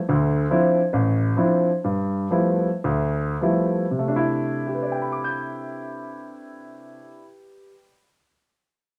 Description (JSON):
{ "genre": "solo jazz", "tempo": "93-144 BPM", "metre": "4/4", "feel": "swing 65% on 8ths, rubato", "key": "C major", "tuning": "A4 = 440 Hz", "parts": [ { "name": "warm grand piano", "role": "solo", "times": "0.1-8.3 s", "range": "A1 to G6", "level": "-23 LUFS", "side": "equal", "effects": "none" } ], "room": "wet studio reverb, RT60 0.7 s", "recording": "none", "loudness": "-22 LUFS", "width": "mono", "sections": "0.0-4.0 A section; 4.0-9.0 B section", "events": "slowing down 0.1-4.0", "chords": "0.1 Dm9; 1.8 G13; 4.0 C69" }